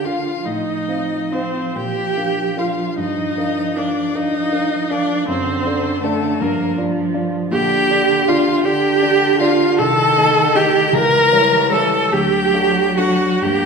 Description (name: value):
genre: classical, slow romantic movement for piano quartet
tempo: 43-55 BPM (dotted quarters)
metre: 6/8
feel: rubato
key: G minor from 7.5 s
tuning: A4 = 440 Hz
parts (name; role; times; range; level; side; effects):
- warm violin; melody; 0.0-13.7 s; A4 to A#5; -23 LUFS; left 11 dB; none
- warm cello; second line; 0.0-13.7 s; D3 to Bb3; -23 LUFS; right 4 dB; none
- dark baby grand piano; accompaniment; 0.0-13.7 s; Bb1 to F5; -22 LUFS; left 2 dB; none
- rich viola; accompaniment; 0.0-13.7 s; A3 to A#4; -17 LUFS; right 2 dB; none
room: wet scoring stage reverb, RT60 1.5 s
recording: minimal, uncompressed stereo recording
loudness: -15 LUFS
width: side -5 dB against mid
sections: 0.0-13.7 A section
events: none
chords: 0.5 F7/A; 1.8 Bb; 3.0 Gm7; 5.3 D7/F#; 6.4 G5; 7.5 Gm/Bb; 9.8 Adim/C; 10.9 C#dim7; 12.1 D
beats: | 0.46 1.76 | 2.98 4.15 | 5.29 6.41 | 7.52 8.65 | 9.79 10.94 | 12.13 13.44